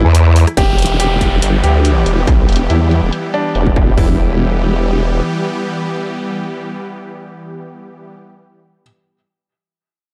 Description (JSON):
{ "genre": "heavy wobble dubstep", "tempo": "141 BPM", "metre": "4/4", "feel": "swing 54% on 16ths, half-time", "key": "E minor", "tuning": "A4 = 440 Hz", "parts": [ { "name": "clear baby grand piano", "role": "melody", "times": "0.0-8.8 s", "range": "E3 to G4", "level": "-24 LUFS", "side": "equal", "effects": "dub echo" }, { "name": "formant-sweep wobble bass", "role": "bass", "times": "0.0-5.2 s", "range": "E1 to E2", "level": "-16 LUFS", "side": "equal", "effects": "chorus, overdrive" }, { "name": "vowel-sweep wobble bass", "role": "bass", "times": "0.0-0.5 s", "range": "E2", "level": "-10 LUFS", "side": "equal", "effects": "chorus, overdrive" }, { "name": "dubstep drum kit", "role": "drums", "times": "0.1-3.9 s", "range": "hi-hat, rim click", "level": "-26 LUFS", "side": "equal", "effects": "low-pass filter on hats, low-pass filter on snare" }, { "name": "supersaw pad", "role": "sustained chords", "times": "0.6-8.1 s", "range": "E3 to G4", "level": "-23 LUFS", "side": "equal", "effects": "sidechain pumping" }, { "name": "dubstep drum kit", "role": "drums", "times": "0.6-4.1 s", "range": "hi-hat, kick drum, toms", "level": "-17 LUFS", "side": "equal", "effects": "distortion" }, { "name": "downlifter", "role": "sound effects", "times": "0.6-4.0 s", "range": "none", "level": "-28 LUFS", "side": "equal", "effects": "none" } ], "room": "little or no reverb", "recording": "dark, warm production", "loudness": "-14 LUFS", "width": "mono", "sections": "0.6-4.0 A section; 4.0-7.4 B section", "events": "break 0.0-0.6", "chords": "0.0 N.C.; 0.6 Em" }